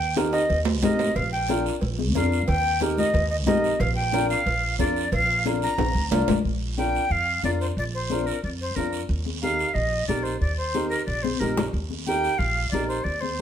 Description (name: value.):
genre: latin, cumbia.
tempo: 182 BPM.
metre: 4/4.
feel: straight.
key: Bb major.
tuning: A4 = 438 Hz.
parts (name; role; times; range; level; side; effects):
breathy bright jazz flute; melody; 0.0-13.4 s; Bb4 to Bb5; -26 LUFS; equal; none.
upright bass; bass; 0.0-13.4 s; Bb1 to F2; -27 LUFS; equal; none.
dark upright piano; accompaniment; 0.2-13.4 s; D4 to Bb4; -28 LUFS; equal; none.
congas; percussion; 0.2-13.4 s; none; -29 LUFS; left 5 dB; none.
cowbell and timbales; percussion; 0.2-6.4 s; none; -31 LUFS; right 5 dB; none.
guiro; percussion; 0.2-13.4 s; none; -37 LUFS; right 7 dB; none.
room: wet studio reverb, RT60 0.8 s.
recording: band playing live in one room.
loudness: -22 LUFS.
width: side -9 dB against mid.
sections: 0.0-6.4 A section; 6.4-13.4 B section.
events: drum fill 0.2-1.2, 5.8-6.4, 11.2-11.7.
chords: 0.0 Eb; 1.2 Bb; 2.5 Eb; 3.8 Bb; 9.1 Eb.